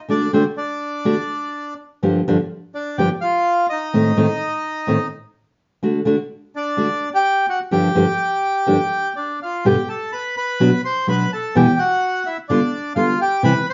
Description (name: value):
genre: tango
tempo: 126 BPM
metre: 4/4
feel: rubato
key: G minor, G major from 9.7 s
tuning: A4 = 440 Hz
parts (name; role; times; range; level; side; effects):
- bandoneon; melody; 0.1-13.7 s; C4 to C6; -23 LUFS; equal; none
- nylon-string guitar; accompaniment; 0.1-13.5 s; E2 to G4; -19 LUFS; equal; none
room: wet studio reverb, RT60 0.6 s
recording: band playing live in one room, nothing above 7.5 kHz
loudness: -19 LUFS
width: mono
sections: 0.0-9.7 A section; 9.7-13.7 B section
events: none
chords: 0.1 D; 2.0 Gm7; 3.9 Adim; 5.8 D; 7.7 Gm7; 9.7 G; 10.6 Bm; 11.6 Em; 12.5 G7/D